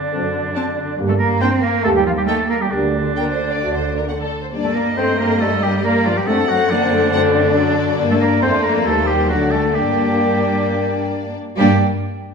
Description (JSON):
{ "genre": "quick classical-period movement for symphony orchestra", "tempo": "129-141 BPM", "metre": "4/4", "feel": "rubato", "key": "G minor", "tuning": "A4 = 441 Hz", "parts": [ { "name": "clear oboe", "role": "second line", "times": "0.0-11.8 s", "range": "D4 to C5", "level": "-23 LUFS", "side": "right 2 dB", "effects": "none" }, { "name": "mellow hollow flute section", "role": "second line", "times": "0.0-11.8 s", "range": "D5 to C6", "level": "-24 LUFS", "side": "right 1 dB", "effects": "none" }, { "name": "warm chamber cello section", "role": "bass", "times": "0.0-11.8 s", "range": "D3 to C4", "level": "-22 LUFS", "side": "right 2 dB", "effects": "none" }, { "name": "warm French horn section", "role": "sustained chords", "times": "0.1-11.8 s", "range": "G3 to A4", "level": "-23 LUFS", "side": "left 2 dB", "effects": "none" }, { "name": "warm chamber double bass section", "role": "bass", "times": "0.1-11.8 s", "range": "D2 to G2", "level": "-24 LUFS", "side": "right 2 dB", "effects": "none" }, { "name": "rich symphonic violin section", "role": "second line", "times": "0.5-11.8 s", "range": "A3 to D5", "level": "-26 LUFS", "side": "left 3 dB", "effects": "none" }, { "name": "rich chamber viola section", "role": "accompaniment", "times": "0.5-11.8 s", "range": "F#3 to C4", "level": "-22 LUFS", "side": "left 4 dB", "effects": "none" }, { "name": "rich chamber violin section", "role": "melody", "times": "0.6-11.8 s", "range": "C5 to A5", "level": "-26 LUFS", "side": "left 4 dB", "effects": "none" } ], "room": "wet scoring stage reverb, RT60 1.6 s", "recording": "minimal, uncompressed stereo recording", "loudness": "-15 LUFS", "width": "side -5 dB against mid", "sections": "0.0-11.6 A section", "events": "none", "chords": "0.0 D7/F#; 1.0 Gm; 1.8 Eb; 2.7 Gm/D; 3.6 D; 4.5 Gm; 6.3 D7/F#; 8.0 Gm; 8.9 Eb; 9.3 D; 9.7 Gm", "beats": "0.11 0.54 | 0.97 1.41 1.84 2.28 | 2.72 3.17 3.63 4.08 | 4.53 4.97 5.41 5.84 | 6.28 6.71 7.13 7.56 | 7.99 8.42 8.85 9.29 | 9.74 10.20 10.65 11.12 | 11.58" }